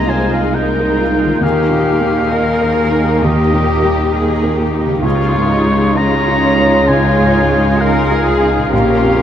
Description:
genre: cinematic, emotional film score for orchestra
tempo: 66 BPM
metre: 4/4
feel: rubato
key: unclear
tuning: A4 = 439 Hz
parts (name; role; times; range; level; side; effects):
- muted studio violin section; melody; 0.0-9.2 s; Eb4 to F4; -23 LUFS; right 1 dB; none
- muted studio violin section; second line; 0.0-9.2 s; F4 to Db5; -21 LUFS; left 2 dB; none
- warm oboe; second line; 0.0-9.2 s; Db5 to Bb5; -19 LUFS; left 1 dB; none
- felt-muted upright piano; accompaniment; 0.0-9.2 s; Bb1 to Bb4; -19 LUFS; right 1 dB; none
- muted studio viola section; accompaniment; 0.0-9.2 s; Eb3 to Eb4; -20 LUFS; right 2 dB; none
- concert harp; arpeggios; 0.0-9.2 s; Bb2 to Bb4; -26 LUFS; left 5 dB; none
- muted studio cello section; bass; 0.0-9.2 s; Db4 to Bb4; -18 LUFS; equal; none
- muted studio double bass section; bass; 0.0-9.2 s; Bb1 to Eb2; -19 LUFS; equal; none
room: wet huge ambient reverb, RT60 8.0 s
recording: in a vast, echoing space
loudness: -11 LUFS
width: side -10 dB against mid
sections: 0.0-9.2 A section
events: none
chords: 0.0 Abadd9/C; 1.4 Eb; 5.0 Dbadd9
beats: 0.53 | 1.43 2.34 3.25 4.15 | 5.04 5.97 6.89 7.81 | 8.72

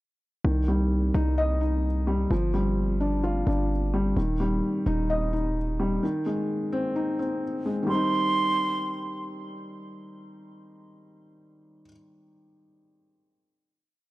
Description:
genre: hip hop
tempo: 129 BPM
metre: 4/4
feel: half-time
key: C minor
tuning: A4 = 439 Hz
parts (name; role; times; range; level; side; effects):
- felt-muted upright piano; accompaniment; 0.4-14.1 s; Eb3 to Eb5; -27 LUFS; left 1 dB; none
- hard-hitting 808-style bass; bass; 0.4-6.0 s; Eb1 to C2; -26 LUFS; equal; tube saturation
- reedy concert flute; melody; 7.9-9.2 s; C6; -26 LUFS; right 4 dB; tape echo
room: little or no reverb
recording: dry, gritty hardware recording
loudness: -24 LUFS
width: side -17 dB against mid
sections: 0.4-7.9 verse; 7.9-11.6 final chord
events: none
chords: 0.4 Cm; 2.3 G5; 4.2 Eb; 6.0 Ab; 7.9 Cm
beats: | 0.45 0.91 1.38 1.84 | 2.31 2.77 3.24 3.70 | 4.17 4.63 5.10 5.56 | 6.03 6.49 6.96 7.42 | 7.89 8.35 8.82 9.28 | 9.75 10.21 10.68 11.14

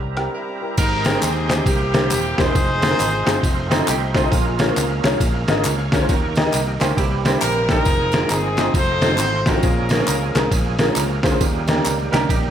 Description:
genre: uptempo gospel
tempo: 136 BPM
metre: 4/4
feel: swing 62% on 8ths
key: unclear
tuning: A4 = 443 Hz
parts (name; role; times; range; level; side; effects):
- clear upright piano; accompaniment; 0.0-12.2 s; Ab2 to Eb5; -23 LUFS; equal; lush chorus
- percussive tonewheel organ; sustained chords; 0.0-12.5 s; Db3 to G5; -27 LUFS; right 4 dB; fast rotary speaker, overdrive, chorus vibrato
- fingered electric bass; bass; 0.0-12.5 s; Eb1 to Eb2; -24 LUFS; equal; none
- trip hop sampler-style drum kit; drums; 0.2-12.4 s; crash cymbal, hi-hat, kick drum, ride cymbal, rim click, snare drum; -21 LUFS; equal; gated reverb
- warm horn section; melody; 0.3-3.7, 7.4-10.8 s; Bb3 to C5; -22 LUFS; equal; ping-pong delay
- tambourine and handclaps; percussion; 0.8-12.4 s; none; -29 LUFS; left 1 dB; none
- semi-hollow electric guitar; second line; 3.7-7.8, 12.1-12.5 s; C4 to Bb4; -27 LUFS; right 7 dB; analog chorus
room: moderate plate reverb, RT60 1.1 s, studio ambience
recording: bright 1980s-style digital production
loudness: -16 LUFS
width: side -9 dB against mid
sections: 0.8-12.5 A section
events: none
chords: 0.0 C7; 0.8 Abmaj7; 1.7 C7; 2.6 Fm7; 3.4 F7; 4.3 Bbm7; 6.1 Eb; 7.0 C7; 7.9 Fm7; 8.7 F7b9; 9.6 Bbm7; 11.4 Eb7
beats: 0.34 | 0.78 1.23 1.67 2.11 | 2.56 3.00 3.44 3.88 | 4.33 4.77 5.21 5.65 | 6.09 6.54 6.98 7.42 | 7.86 8.31 8.75 9.19 | 9.63 10.08 10.52 10.96 | 11.41 11.85 12.30

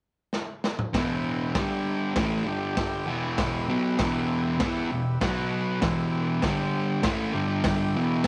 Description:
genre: garage rock duo or trio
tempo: 98 BPM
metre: 4/4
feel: straight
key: E minor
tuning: A4 = 440 Hz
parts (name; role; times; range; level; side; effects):
- raw garage drum kit; drums; 0.3-8.3 s; hi-hat, kick drum, snare drum, toms; -32 LUFS; equal; none
- overdriven combo organ; sustained chords; 0.9-8.3 s; F#4 to B5; -38 LUFS; equal; none
- fuzz guitar; riff; 0.9-8.3 s; E2 to E4; -28 LUFS; equal; distortion
room: light reverb, studio reverb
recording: none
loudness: -27 LUFS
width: mono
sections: 0.9-8.3 A section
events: drum fill 0.3-0.9; transistor combo organ fill 4.9-5.8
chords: 0.0 N.C.; 0.9 Em; 1.6 G5; 2.2 A5; 2.5 G5; 3.1 Em; 5.2 B5; 5.8 Em; 6.4 G5; 7.0 A5; 7.4 G5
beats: 0.34 | 0.95 1.56 2.17 2.78 | 3.39 4.00 4.61 5.22 | 5.83 6.44 7.05 7.66 | 8.27

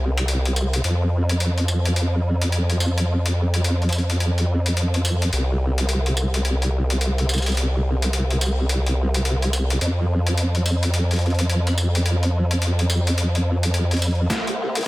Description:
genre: glitch hop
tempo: 107 BPM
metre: 4/4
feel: swing 61% on 16ths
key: unclear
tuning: A4 = 440 Hz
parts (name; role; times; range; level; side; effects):
- formant-sweep wobble bass; bass; 0.0-14.8 s; C2 to F2; -19 LUFS; equal; chorus, high-pass filter
- boom bap sampler-style drum kit; drums; 0.2-14.9 s; hi-hat, snare drum, tambourine; -26 LUFS; left 1 dB; overdrive, high-pass filter on hats, high-pass filter on cymbals, high-pass filter on perc, high-pass filter on snare, high-pass filter on room
- electronic kick drum; drums; 14.3-14.4 s; none; -31 LUFS; equal; overdrive, high-pass filter on kick, high-pass filter on room
room: little or no reverb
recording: dense, heavily limited modern master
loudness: -19 LUFS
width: side -19 dB against mid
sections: 0.0-14.3 A section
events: drum fill 14.3-14.9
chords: none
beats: 0.28 | 0.84 1.40 1.97 2.52 | 3.09 3.65 4.21 4.77 | 5.33 5.89 6.45 7.01 | 7.57 8.13 8.69 9.25 | 9.81 10.38 10.94 11.50 | 12.06 12.62 13.18 13.74 | 14.30 14.86

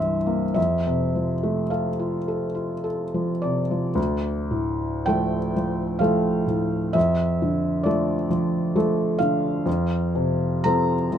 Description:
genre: classical, romantic nocturne for solo piano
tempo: 50-68 BPM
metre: 3/4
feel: rubato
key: F major, D minor from 4.0 s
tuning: A4 = 435 Hz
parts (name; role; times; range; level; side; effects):
- felt-muted upright piano; solo; 0.0-11.2 s; C2 to Bb5; -21 LUFS; equal; none
room: little or no reverb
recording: close, detailed microphones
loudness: -21 LUFS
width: side -9 dB against mid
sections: 0.0-4.0 A section; 4.0-11.2 B section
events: none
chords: 0.0 C7; 0.6 F; 4.0 Dm; 7.0 Dm/F; 9.7 F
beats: | 0.56 1.72 2.85 | 3.97 5.07 6.01 | 6.96 7.86 8.76 | 9.66 10.65

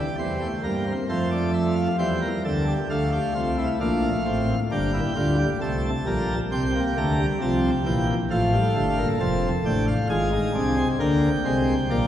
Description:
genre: classical, baroque-style 4-part fugue for pipe organ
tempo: 66 BPM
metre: 4/4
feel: straight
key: unclear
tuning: A4 = 440 Hz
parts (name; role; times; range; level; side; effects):
- pipe organ, plenum; solo; 0.0-12.1 s; F1 to Bb5; -21 LUFS; equal; none
room: wet church reverb, RT60 3.1 s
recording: heard from further back in the room, vinyl crackle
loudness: -21 LUFS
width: side -11 dB against mid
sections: 0.0-12.1 A section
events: none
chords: 0.0 C7; 1.1 F; 2.9 Dm; 4.7 Gm; 6.5 C; 8.3 F; 10.1 Ab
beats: 0.18 1.09 2.00 | 2.90 3.80 4.71 5.61 | 6.51 7.41 8.31 9.20 | 10.10 11.00 11.91

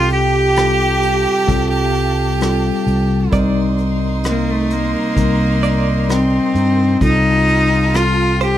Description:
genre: acoustic folk-pop ballad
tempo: 65 BPM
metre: 4/4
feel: straight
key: unclear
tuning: A4 = 440 Hz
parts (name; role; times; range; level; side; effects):
- bright cello; melody; 0.0-8.6 s; A3 to G4; -17 LUFS; left 1 dB; none
- bright violin; second line; 0.0-8.6 s; Eb4 to G4; -23 LUFS; right 4 dB; none
- mellow tine electric piano; accompaniment; 0.0-8.6 s; C2 to Bb4; -20 LUFS; left 2 dB; slow stereo tremolo
- warm symphonic string section; sustained chords; 0.0-8.6 s; G4 to C6; -30 LUFS; left 2 dB; none
- fingered electric bass; bass; 0.0-8.6 s; C2 to G2; -18 LUFS; equal; none
- vintage brush drum kit; drums; 0.1-8.6 s; hi-hat, kick drum, rim click; -22 LUFS; equal; none
- direct-recorded clean electric guitar; arpeggios; 3.3-8.6 s; C5 to D5; -25 LUFS; right 7 dB; tremolo
room: light reverb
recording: none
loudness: -13 LUFS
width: side -12 dB against mid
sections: 0.0-8.6 A section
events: none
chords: 0.0 Fadd9/C; 3.3 Cm7; 7.0 Fadd9/C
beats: 0.57 1.49 2.41 | 3.33 4.25 5.17 6.09 | 7.01 7.94

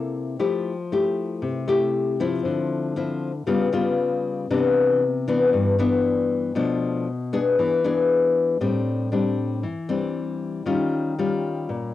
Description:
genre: bossa nova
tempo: 117 BPM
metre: 4/4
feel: straight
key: unclear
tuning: A4 = 442 Hz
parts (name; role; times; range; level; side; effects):
- nylon-string guitar; solo; 0.0-11.9 s; G2 to A4; -21 LUFS; left 3 dB; cassette tape
room: moderate studio reverb, RT60 0.6 s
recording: home recording on cassette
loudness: -20 LUFS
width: side -13 dB against mid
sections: 0.0-8.6 A section; 8.6-11.9 B section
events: none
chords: 0.4 Fmaj9; 2.4 Dm9; 3.5 C#7#11; 4.5 Cmaj9; 6.6 Bm7b5; 7.6 E7; 8.6 Am7; 10.7 D#9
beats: | 0.39 0.91 1.42 1.93 | 2.45 2.96 3.48 3.99 | 4.50 5.01 5.53 6.04 | 6.55 7.07 7.58 8.09 | 8.61 9.12 9.63 10.15 | 10.66 11.18 11.69

